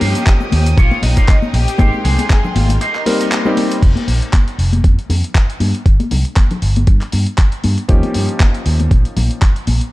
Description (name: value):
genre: nu-disco, nu disco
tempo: 118 BPM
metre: 4/4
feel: swing 56% on 16ths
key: unclear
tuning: A4 = 440 Hz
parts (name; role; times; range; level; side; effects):
- dark symphonic violin section; melody; 0.0-3.3 s; Eb4 to Ab4; -25 LUFS; left 2 dB; analog delay
- warm electric grand piano; accompaniment; 0.0-3.8, 7.9-9.4 s; F3 to G5; -21 LUFS; left 1 dB; analog delay
- warm studio violin section; sustained chords; 0.0-3.8 s; Ab3 to Eb6; -28 LUFS; right 1 dB; sidechain pumping
- electric guitar with an envelope filter; riff; 0.0-3.6 s; Eb4 to Eb5; -24 LUFS; right 2 dB; lush chorus
- fingered electric bass with an envelope filter; bass; 0.0-9.8 s; F1 to G2; -15 LUFS; equal; none
- dusty soul sampler-style drum kit; drums; 0.0-9.9 s; crash cymbal, handclaps, hi-hat, ride cymbal; -24 LUFS; equal; studio reverb
- congas and egg shaker; percussion; 0.0-9.8 s; none; -23 LUFS; left 3 dB; none
- electronic kick drum; drums; 0.3-9.5 s; none; -11 LUFS; equal; studio reverb
room: little or no reverb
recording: dark, warm production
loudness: -12 LUFS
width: side -18 dB against mid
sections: 0.0-3.8 A section; 3.8-9.9 B section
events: drop 0.0-3.8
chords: 0.0 Eb7; 1.8 Abmaj7; 2.8 Cm7; 3.8 N.C.; 7.9 Eb7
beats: 0.27 0.78 1.28 | 1.79 2.30 2.81 3.32 | 3.83 4.33 4.84 5.35 | 5.86 6.37 6.88 7.38 | 7.89 8.40 8.91 9.42